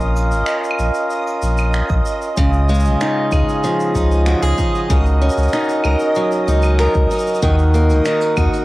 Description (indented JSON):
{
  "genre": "folktronica",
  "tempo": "95 BPM",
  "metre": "4/4",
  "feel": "straight",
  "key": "unclear",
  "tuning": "A4 = 440 Hz",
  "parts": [
    { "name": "mellow accordion", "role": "sustained chords", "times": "0.0-8.6 s", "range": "Db4 to Gb5", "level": "-21 LUFS", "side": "right 1 dB", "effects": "none" },
    { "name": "warm sub bass", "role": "bass", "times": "0.0-8.5 s", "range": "Ab1 to Eb2", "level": "-15 LUFS", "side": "equal", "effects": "tube saturation" },
    { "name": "jazz brush drum kit", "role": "drums", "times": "0.0-8.6 s", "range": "claves, finger snaps, hi-hat, shaker", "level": "-28 LUFS", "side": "equal", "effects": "none" },
    { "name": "backwards swelling texture", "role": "texture", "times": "0.0-8.6 s", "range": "Eb5 to Eb6", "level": "-27 LUFS", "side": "right 2 dB", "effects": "built-in reverb" },
    { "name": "electronic kick drum", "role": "drums", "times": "1.9-8.5 s", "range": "none", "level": "-20 LUFS", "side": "equal", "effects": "none" },
    { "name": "picked steel-string acoustic guitar", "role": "arpeggios", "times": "2.4-8.6 s", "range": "Db3 to Bb4", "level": "-18 LUFS", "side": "equal", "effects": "analog delay" }
  ],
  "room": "light reverb",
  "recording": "home recording on cassette",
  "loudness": "-14 LUFS",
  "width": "side -18 dB against mid",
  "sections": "0.0-8.6 A section",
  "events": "none",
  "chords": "0.0 Bbm; 2.4 Dbadd9; 4.9 Gb6/Db",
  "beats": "0.48 1.11 1.74 | 2.37 3.00 3.63 4.27 | 4.90 5.53 6.16 6.79 | 7.42 8.06"
}